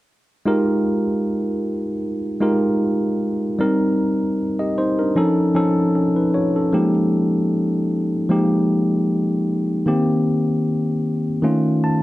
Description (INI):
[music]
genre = soul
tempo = 76 BPM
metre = 4/4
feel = swing 54% on 16ths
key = F minor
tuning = A4 = 441 Hz
[part]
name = tine electric piano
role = solo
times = 0.5-12.0 s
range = Eb3 to A5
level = -17 LUFS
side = equal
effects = none
[sound]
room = light reverb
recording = none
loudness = -17 LUFS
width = side -16 dB against mid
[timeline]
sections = 0.5-6.7 A section; 6.7-12.0 B section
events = tine electric piano fill 11.5-12.0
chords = 0.5 Fm11; 3.6 Cm7; 5.2 Faug7; 6.7 Fm11; 9.9 Cm7; 11.5 Faug7